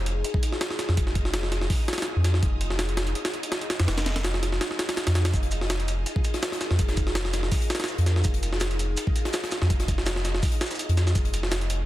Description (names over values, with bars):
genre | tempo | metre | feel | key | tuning
drum and bass, jungle | 165 BPM | 4/4 | swing 53% on 16ths | F minor | A4 = 441 Hz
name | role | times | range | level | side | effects
ethereal airy pad | sustained chords | 0.0-11.9 s | Eb4 to Eb5 | -35 LUFS | equal | ensemble chorus, built-in reverb, phaser, vintage 12-bit sampler grit
soft dub sub bass | bass | 0.0-11.9 s | F1 to F2 | -25 LUFS | equal | tube saturation
jungle sampler-style drum kit | drums | 0.1-11.8 s | hi-hat, kick drum, snare drum | -26 LUFS | equal | none
open jazz drum kit | drums | 5.3-11.8 s | hi-hat, shaker, snare drum | -38 LUFS | left 1 dB | high-pass filter on hats, high-pass filter on snare, high-pass filter on perc, high-pass filter on room
room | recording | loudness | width
small room ambience | dense, heavily limited modern master | -23 LUFS | side -15 dB against mid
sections
0.0-11.9 A section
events
kick drops out 4.6-5.3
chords
0.0 Fm7